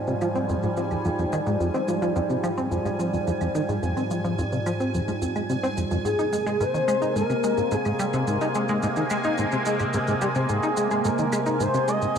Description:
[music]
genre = ambient, sequencer-driven space music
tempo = 108 BPM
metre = 4/4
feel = straight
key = F minor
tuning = A4 = 443 Hz
[part]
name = sweeping resonant pad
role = sustained chords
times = 0.0-12.2 s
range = Ab2 to Bb3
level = -27 LUFS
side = equal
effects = chorus, phaser
[part]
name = bubbling stepped-filter texture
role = texture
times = 0.0-12.2 s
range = Ab5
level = -34 LUFS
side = right 2 dB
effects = chorus, built-in reverb
[part]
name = plucky analog bass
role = riff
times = 0.1-12.2 s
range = F2 to Eb4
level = -25 LUFS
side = equal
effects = lush chorus, tape echo
[part]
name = shaker and claves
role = percussion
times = 0.1-12.2 s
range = none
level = -41 LUFS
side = right 2 dB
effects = tape echo
[part]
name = expressive synth lead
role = melody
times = 6.0-12.2 s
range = Ab4 to Eb5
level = -27 LUFS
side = left 2 dB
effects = lush chorus, tape echo
[sound]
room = moderate plate reverb, RT60 2.9 s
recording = none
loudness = -22 LUFS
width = side -7 dB against mid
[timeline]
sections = 0.0-12.2 A section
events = fade-in on drum 0.0-12.2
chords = 0.0 Fmadd9; 6.0 Abadd9

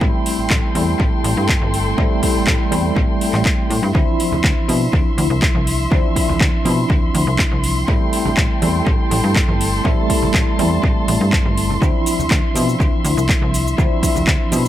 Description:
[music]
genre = filtered disco house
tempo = 122 BPM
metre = 4/4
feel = straight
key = D minor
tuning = A4 = 440 Hz
[part]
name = tine electric piano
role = accompaniment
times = 0.0-14.7 s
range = F3 to E4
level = -21 LUFS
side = equal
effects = medium stereo tremolo, phaser, sidechain pumping, low-pass filter, analog delay
[part]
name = warm studio violin section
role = sustained chords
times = 0.0-14.7 s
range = A4 to C6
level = -25 LUFS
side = left 2 dB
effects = vintage 12-bit sampler grit, sidechain pumping, low-pass filter
[part]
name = slap-like FM bass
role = bass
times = 0.0-14.7 s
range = G1 to B2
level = -20 LUFS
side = equal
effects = sidechain pumping, low-pass filter
[part]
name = electronic kick drum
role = drums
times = 0.0-14.4 s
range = none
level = -18 LUFS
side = equal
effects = overdrive
[part]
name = house drum kit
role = drums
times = 0.3-14.7 s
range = cabasa, handclaps, hi-hat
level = -23 LUFS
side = equal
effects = overdrive, sidechain pumping on hats, sidechain pumping on perc, analog delay
[part]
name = congas and maracas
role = percussion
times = 3.9-14.7 s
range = none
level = -28 LUFS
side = right 3 dB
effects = none
[sound]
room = little or no reverb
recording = echo-heavy mix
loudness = -14 LUFS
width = side -12 dB against mid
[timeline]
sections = 0.0-14.7 A section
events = none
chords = 0.0 Am7; 3.9 Dm9; 7.9 Am7; 11.8 Dm9

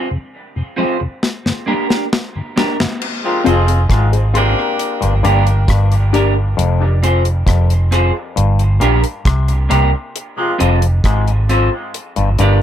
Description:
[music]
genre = dub reggae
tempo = 67 BPM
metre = 4/4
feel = straight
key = F dorian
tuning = A4 = 442 Hz
[part]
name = semi-hollow electric guitar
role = accompaniment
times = 0.0-12.6 s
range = Bb3 to D5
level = -20 LUFS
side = right 2 dB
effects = wide subtle chorus, low-pass filter, dub echo
[part]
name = mellow tonewheel organ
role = accompaniment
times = 0.1-2.9 s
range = F2 to D4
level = -24 LUFS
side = left 1 dB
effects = chorus vibrato, slow rotary speaker, low-pass filter
[part]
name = deep reggae drum kit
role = drums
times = 1.2-12.6 s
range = crash cymbal, hi-hat, kick drum, rim click, snare drum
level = -19 LUFS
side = equal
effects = none
[part]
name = mellow horn section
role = second line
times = 3.2-10.6 s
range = F3 to Bb4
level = -22 LUFS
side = left 1 dB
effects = dub echo
[part]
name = filtered dub chord stab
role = stabs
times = 3.4-6.3 s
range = C4 to D5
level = -23 LUFS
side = left 6 dB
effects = phaser, dub echo
[part]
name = mellow clav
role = riff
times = 3.5-12.6 s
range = F2 to C3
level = -22 LUFS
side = left 6 dB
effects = dub echo
[part]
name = vintage muted fingered electric bass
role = bass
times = 3.5-12.6 s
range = F1 to C2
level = -13 LUFS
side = equal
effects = none
[sound]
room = light reverb, small room ambience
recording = none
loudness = -13 LUFS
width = side -10 dB against mid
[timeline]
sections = 0.0-3.0 A section; 3.0-12.6 B section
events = drum fill 1.2-3.0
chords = 0.0 Fm; 1.2 Gm; 3.0 Fm; 4.8 Gm; 6.6 Fm; 8.4 Gm; 10.1 Fm; 11.9 Gm

